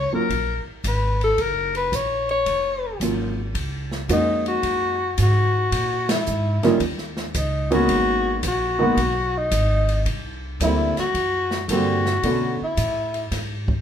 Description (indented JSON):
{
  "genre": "jazz, small-group swing and bop",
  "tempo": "111 BPM",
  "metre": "4/4",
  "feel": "swing 68% on 8ths",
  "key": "Eb minor, F# major from 3.6 s",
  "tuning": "A4 = 438 Hz",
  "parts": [
    { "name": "clear alto saxophone", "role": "melody", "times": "0.0-13.3 s", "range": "D#4 to Db5", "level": "-22 LUFS", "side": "left 2 dB", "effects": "none" },
    { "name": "upright bass", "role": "bass", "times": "0.0-13.8 s", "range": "F1 to B2", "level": "-25 LUFS", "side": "equal", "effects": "none" },
    { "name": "dark baby grand piano", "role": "accompaniment", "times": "0.1-12.6 s", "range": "D3 to G4", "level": "-22 LUFS", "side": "right 1 dB", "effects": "none" },
    { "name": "open jazz drum kit", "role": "drums", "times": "0.3-13.8 s", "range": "hi-hat, kick drum, ride cymbal, snare drum", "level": "-30 LUFS", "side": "equal", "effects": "none" }
  ],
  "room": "wet club reverb, RT60 0.7 s",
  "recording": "minimal, uncompressed stereo recording",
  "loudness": "-19 LUFS",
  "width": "side -9 dB against mid",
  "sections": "0.0-3.6 A section; 3.6-13.8 B section",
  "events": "band accent 6.0",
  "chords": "0.0 Ebm9 (rootless); 3.6 F#69; 5.7 A#m7b5; 6.8 D#5; 7.9 G#m7; 10.1 C9; 12.2 Bm7"
}